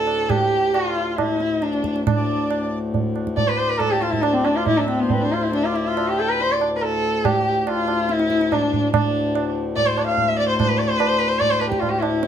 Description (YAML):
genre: indian classical, Hindustani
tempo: 134-148 BPM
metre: 4/4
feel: straight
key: D raga bageshri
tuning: A4 = 440 Hz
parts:
  - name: rich sarangi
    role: melody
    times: 0.0-12.3 s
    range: B3 to F5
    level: -20 LUFS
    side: left 1 dB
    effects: slapback echo
  - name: hand-pumped harmonium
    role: drone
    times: 0.0-12.3 s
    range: D2 to A2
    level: -27 LUFS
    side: left 4 dB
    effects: none
  - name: tabla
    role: percussion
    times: 0.1-12.3 s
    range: none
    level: -24 LUFS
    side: right 5 dB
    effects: none
  - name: hand-pumped harmonium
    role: second line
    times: 2.2-6.7 s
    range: B4 to C6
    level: -29 LUFS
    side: left 2 dB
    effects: none
room: moderate studio reverb, RT60 0.6 s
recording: none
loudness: -18 LUFS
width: side -9 dB against mid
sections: 0.0-8.9 A section; 8.9-12.3 B section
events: speeding up 0.0-12.3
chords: none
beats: | 0.29 0.73 1.18 1.62 | 2.06 2.50 2.94 3.38 | 3.81 4.25 4.68 5.11 | 5.54 5.97 6.40 6.83 | 7.25 7.67 8.09 8.51 | 8.93 9.35 9.77 10.18 | 10.59 11.00 11.41 11.82 | 12.23